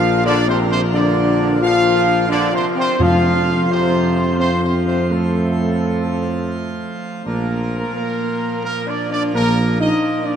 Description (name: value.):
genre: classical, ceremonial fanfare.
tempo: 86 BPM.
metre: 3/4.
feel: straight.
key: Bb major.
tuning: A4 = 440 Hz.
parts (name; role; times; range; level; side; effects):
mellow trumpet section; melody; 0.0-10.4 s; A4 to F5; -22 LUFS; right 2 dB; none.
mellow French horn section; sustained chords; 0.0-10.4 s; A3 to F4; -20 LUFS; left 2 dB; none.
mellow trombone section; sustained chords; 0.0-9.6 s; A2 to D4; -25 LUFS; left 1 dB; none.
pipe organ, full organ; sustained chords; 0.0-10.4 s; Bb2 to C5; -26 LUFS; right 2 dB; none.
dark tuba; bass; 0.0-9.9 s; Bb1 to F2; -20 LUFS; equal; none.
timpani; percussion; 3.0-4.0 s; F2; -24 LUFS; equal; none.
room: wet cathedral reverb, RT60 6.0 s.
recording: in a vast, echoing space.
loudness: -15 LUFS.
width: side -8 dB against mid.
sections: 0.0-7.3 A section; 7.3-10.4 B section.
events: none.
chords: 0.0 Bb; 3.0 F; 7.3 Bb.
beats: 0.24 | 0.93 1.61 2.29 | 3.00 3.69 4.39 | 5.11 5.82 6.54 | 7.26 7.96 8.65 | 9.34 10.03.